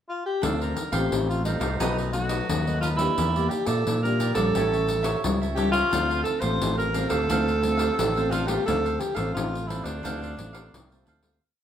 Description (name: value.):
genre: samba and choro.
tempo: 87 BPM.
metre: 4/4.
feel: straight.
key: D minor.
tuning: A4 = 440 Hz.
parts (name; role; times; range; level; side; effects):
breathy alto saxophone; melody; 0.1-11.1 s; D4 to C5; -27 LUFS; right 1 dB; none.
cavaquinho; accompaniment; 0.4-11.4 s; D4 to F5; -34 LUFS; right 3 dB; none.
nylon-string guitar; accompaniment; 0.4-11.4 s; F#2 to G4; -31 LUFS; left 2 dB; none.
growling fingered electric bass; bass; 0.4-11.4 s; A1 to Bb2; -28 LUFS; equal; overdrive.
pandeiro; percussion; 0.4-11.4 s; none; -32 LUFS; left 3 dB; none.
room: moderate stone room reverb, RT60 1.0 s.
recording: band playing live in one room.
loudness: -22 LUFS.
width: side -9 dB against mid.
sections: 0.0-0.4 pickup bar; 0.4-11.4 A section.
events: fade-out 8.7-11.4.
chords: 0.4 Dm7; 1.8 B7; 3.2 Em7b5; 4.6 A7; 5.9 Dm7.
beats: | 0.43 1.12 1.81 2.50 | 3.18 3.87 4.55 5.24 | 5.93 6.61 7.30 7.99 | 8.68 9.36 10.05 10.74.